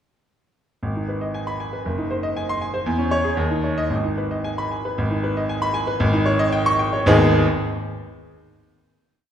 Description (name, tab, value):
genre	classical, virtuoso piano study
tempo	116 BPM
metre	2/4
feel	rubato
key	G# minor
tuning	A4 = 441 Hz
part	clear baby grand piano	solo	0.8-7.5 s	F#1 to C#6	-19 LUFS	equal	none
room	wet scoring stage reverb, RT60 1.6 s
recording	heard from further back in the room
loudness	-19 LUFS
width	side -9 dB against mid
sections	0.8-5.0 A section; 5.0-7.1 coda; 7.1-8.1 final chord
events	none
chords	0.8 G#m; 1.9 G#7/F#; 2.9 C#m/E; 3.4 C#sus2/D#; 3.9 G#m; 6.0 D#7/G#; 7.1 G#m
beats	| 0.83 1.34 | 1.85 2.36 | 2.87 3.38 | 3.91 4.45 | 4.98 5.49 | 6.00 6.52 | 7.06